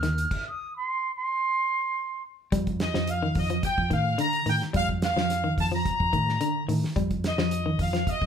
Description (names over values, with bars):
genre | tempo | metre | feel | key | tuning
afrobeat | 108 BPM | 4/4 | straight | F mixolydian | A4 = 442 Hz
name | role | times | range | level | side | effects
mellow concert flute | melody | 0.0-2.2 s | C6 to F6 | -27 LUFS | right 4 dB | none
electric guitar at the edge of break-up | arpeggios | 0.0-8.2 s | D3 to G3 | -29 LUFS | left 2 dB | none
fingered electric bass | bass | 0.0-8.3 s | Eb2 to A2 | -30 LUFS | right 1 dB | none
damped 70s drum kit | drums | 0.0-8.3 s | crash cymbal, hi-hat, kick drum, snare drum | -30 LUFS | right 1 dB | none
bright horn section | melody | 2.8-8.3 s | Eb5 to Bb5 | -28 LUFS | left 1 dB | none
room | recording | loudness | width
light reverb | band playing live in one room | -24 LUFS | side -8 dB against mid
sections
0.0-2.5 A section; 2.5-8.3 B section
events
flute solo 0.0-2.5; stop 0.3-2.5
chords
0.0 F7(no3) (rootless); 2.5 F7sus4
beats
| 0.31 0.87 1.42 1.97 | 2.53 3.08 3.64 4.19 | 4.74 5.30 5.85 6.41 | 6.96 7.52 8.07